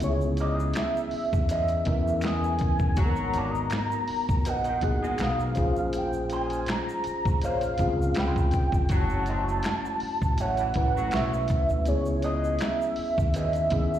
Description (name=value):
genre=R&B, neo-soul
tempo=81 BPM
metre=4/4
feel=swing 54% on 16ths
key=unclear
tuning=A4 = 440 Hz
part: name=warm velvety synth lead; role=melody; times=0.0-14.0 s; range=Db5 to Bb5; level=-29 LUFS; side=right 1 dB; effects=chorus, slapback echo, tape echo
part: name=mellow tine electric piano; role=accompaniment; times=0.0-14.0 s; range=A3 to C5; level=-31 LUFS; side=left 2 dB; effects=medium stereo tremolo, slapback echo
part: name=fingered electric bass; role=bass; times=0.0-14.0 s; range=Gb1 to Fb2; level=-29 LUFS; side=equal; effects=none
part: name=dusty soul sampler-style drum kit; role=drums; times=0.0-13.9 s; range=finger snaps, hi-hat, kick drum, snare drum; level=-28 LUFS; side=equal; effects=none
part: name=egg shaker and finger snaps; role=percussion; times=0.0-14.0 s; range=none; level=-46 LUFS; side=left 2 dB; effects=slapback echo
part: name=electric guitar through a small old amp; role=second line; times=0.4-13.6 s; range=Ab3 to Eb5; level=-35 LUFS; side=right 1 dB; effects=wah, slapback echo
part: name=warm horn section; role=stabs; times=3.0-11.3 s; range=Eb3 to Ab4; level=-37 LUFS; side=equal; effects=slapback echo, tape echo
room=light reverb, digital ambience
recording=live gig heard through the venue's PA, recital hall reverb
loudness=-24 LUFS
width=side -11 dB against mid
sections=0.0-14.0 A section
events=none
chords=0.0 Dbm9; 3.0 Abm9; 5.6 Bbm9; 8.9 Gbm9; 11.9 Dbm9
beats=| 0.01 0.75 1.49 2.23 | 2.97 3.71 4.46 5.20 | 5.94 6.68 7.42 8.16 | 8.90 9.64 10.38 11.12 | 11.86 12.60 13.34